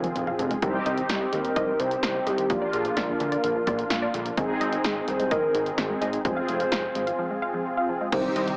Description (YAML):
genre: synth-pop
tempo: 128 BPM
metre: 4/4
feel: straight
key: unclear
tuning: A4 = 439 Hz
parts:
  - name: hollow clarinet-like synth lead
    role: melody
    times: 0.0-8.6 s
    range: G4 to C5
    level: -31 LUFS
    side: equal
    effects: chorus, analog delay
  - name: mellow synth brass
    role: accompaniment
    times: 0.0-8.6 s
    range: Bb3 to Ab4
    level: -31 LUFS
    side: equal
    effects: chorus
  - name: analog pluck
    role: arpeggios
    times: 0.0-8.6 s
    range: D3 to F5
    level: -35 LUFS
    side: equal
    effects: chorus, analog delay
  - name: fat analog bass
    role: bass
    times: 0.0-8.5 s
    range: F1 to Eb2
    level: -35 LUFS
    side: equal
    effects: none
  - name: punchy analog drum machine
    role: drums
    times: 0.0-8.6 s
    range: crash cymbal, hi-hat, kick drum, snare drum, toms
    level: -34 LUFS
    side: equal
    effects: analog delay
  - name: sweeping resonant pad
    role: sustained chords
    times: 8.1-8.6 s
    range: C3 to Eb4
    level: -35 LUFS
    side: equal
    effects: chorus
room: wet spring reverb, RT60 1.7 s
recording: echo-heavy mix, AM radio sound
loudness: -26 LUFS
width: mono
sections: 0.0-8.1 A section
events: drum fill 0.0-0.6; silent gap 7.2-8.1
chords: 0.0 Fm; 0.6 Cm; 2.5 Bb; 4.4 Ab; 6.2 Fm